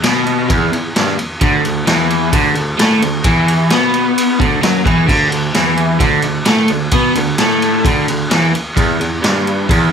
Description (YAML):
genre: garage rock duo or trio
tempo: 131 BPM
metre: 4/4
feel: straight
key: unclear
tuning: A4 = 440 Hz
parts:
  - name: crunchy overdriven guitar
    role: riff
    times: 0.0-9.9 s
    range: E2 to B3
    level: -14 LUFS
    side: equal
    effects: none
  - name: warm baritone saxophone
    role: bass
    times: 0.0-9.9 s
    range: D2 to B2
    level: -21 LUFS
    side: equal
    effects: overdrive
  - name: raw garage drum kit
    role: drums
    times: 0.0-9.8 s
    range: crash cymbal, kick drum, ride cymbal, snare drum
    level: -17 LUFS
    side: equal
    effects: none
room: moderate studio reverb, RT60 0.5 s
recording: none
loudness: -11 LUFS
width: side -7 dB against mid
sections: 0.0-9.9 A section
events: none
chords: 0.0 E5; 1.4 D5; 8.8 E5